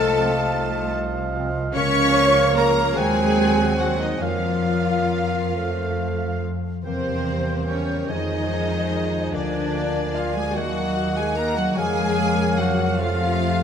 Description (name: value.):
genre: classical.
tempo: 45-51 BPM (dotted quarters).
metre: 6/8.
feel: rubato.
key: Bb minor.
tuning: A4 = 442 Hz.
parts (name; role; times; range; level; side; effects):
rich studio violin section; melody; 0.0-13.6 s; C5 to Db6; -32 LUFS; left 4 dB; none.
dark clarinet; second line; 0.0-13.6 s; C5 to Eb5; -30 LUFS; right 1 dB; none.
mellow hollow concert flute; second line; 0.0-13.6 s; C5 to Db6; -31 LUFS; left 1 dB; none.
warm oboe; second line; 0.0-13.6 s; F5 to Ab5; -32 LUFS; right 4 dB; none.
warm studio violin section; second line; 0.0-13.6 s; C5 to Db6; -32 LUFS; equal; none.
mellow bassoon; accompaniment; 0.0-13.6 s; F3 to C4; -30 LUFS; right 2 dB; none.
rich studio viola section; accompaniment; 0.0-13.6 s; C4 to Db5; -27 LUFS; left 1 dB; none.
warm French horn section; sustained chords; 0.0-13.6 s; C4 to Db5; -30 LUFS; left 3 dB; none.
concert harp; arpeggios; 0.0-13.6 s; C3 to Eb5; -29 LUFS; left 10 dB; none.
rich studio double bass section; bass; 0.0-13.6 s; C2 to F2; -28 LUFS; right 2 dB; none.
warm studio cello section; bass; 0.0-13.6 s; C3 to Db4; -28 LUFS; right 2 dB; none.
bright trombone section; sustained chords; 0.2-13.6 s; C3 to C4; -32 LUFS; right 3 dB; none.
room: wet concert hall reverb, RT60 2.6 s.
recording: none.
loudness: -19 LUFS.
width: side -8 dB against mid.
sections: 0.0-13.6 A section.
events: none.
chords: 0.0 F7/C; 1.8 Bbm/Db; 3.0 Cdim/Eb; 4.2 Bbm/F; 5.5 F; 6.8 C7/E; 8.1 Fm; 9.3 Bb7/D; 10.6 Ebm; 11.8 Bbm/F; 13.0 F.